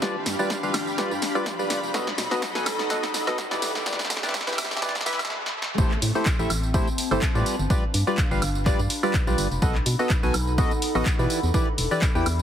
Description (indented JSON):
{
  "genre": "piano house",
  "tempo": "125 BPM",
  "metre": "4/4",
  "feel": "swing 55% on 16ths",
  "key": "A minor",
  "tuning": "A4 = 439 Hz",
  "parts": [
    { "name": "analog string pad", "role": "sustained chords", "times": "0.0-5.8 s", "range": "G4 to D6", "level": "-34 LUFS", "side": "equal", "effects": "ensemble chorus, sidechain pumping" },
    { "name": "percussive organ stab", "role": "riff", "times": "0.0-12.3 s", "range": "E3 to G#5", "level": "-27 LUFS", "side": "equal", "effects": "analog chorus, sidechain pumping, dub echo" },
    { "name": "electronic kick drum", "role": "drums", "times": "0.0-12.1 s", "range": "none", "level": "-24 LUFS", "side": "equal", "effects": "high-pass filter on kick, high-pass filter on room" },
    { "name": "punchy analog drum machine", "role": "drums", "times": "0.0-12.4 s", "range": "handclaps, hi-hat, snare drum, tambourine, woodblock", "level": "-29 LUFS", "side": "equal", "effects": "none" },
    { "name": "riser", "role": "sound effects", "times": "0.0-5.8 s", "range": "none", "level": "-36 LUFS", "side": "right 1 dB", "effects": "none" },
    { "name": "warbly tape-like pad", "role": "texture", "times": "0.0-12.4 s", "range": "C4 to B5", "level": "-32 LUFS", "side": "left 1 dB", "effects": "chorus, built-in reverb, sidechain pumping" },
    { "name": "organ-like FM bass", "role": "bass", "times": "0.3-12.4 s", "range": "E1 to B2", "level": "-27 LUFS", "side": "equal", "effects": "sidechain pumping" }
  ],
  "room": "light reverb, digital ambience",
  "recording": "heavily compressed radio sound, multiband compression, high-pass filter",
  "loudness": "-22 LUFS",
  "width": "side -9 dB against mid",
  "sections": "0.0-5.8 A section; 5.8-12.4 B section",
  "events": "build-up 0.0-5.8; drum fill 0.0-5.3, 5.3-5.8; riser 0.0-5.8; filter sweep 0.0-5.8; break 5.3-5.8; drop 5.8-12.4",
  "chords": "0.0 G7; 1.9 B7; 3.6 Em7; 5.8 Am7; 7.5 G7; 9.6 B7; 11.3 Em7"
}